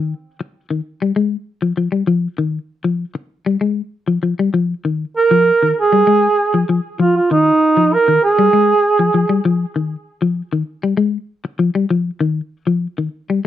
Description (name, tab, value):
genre	afrobeat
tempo	98 BPM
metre	4/4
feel	straight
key	F minor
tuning	A4 = 440 Hz
part	clean electric guitar	arpeggios	0.0-13.4 s	Eb3 to Ab3	-16 LUFS	left 4 dB	none
part	warm duduk	melody	5.2-9.4 s	Eb4 to Bb4	-13 LUFS	right 4 dB	tape echo
room	light reverb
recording	dry, close 1970s-style studio recording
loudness	-14 LUFS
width	side -11 dB against mid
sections	0.0-13.5 A section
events	none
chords	0.0 Fm7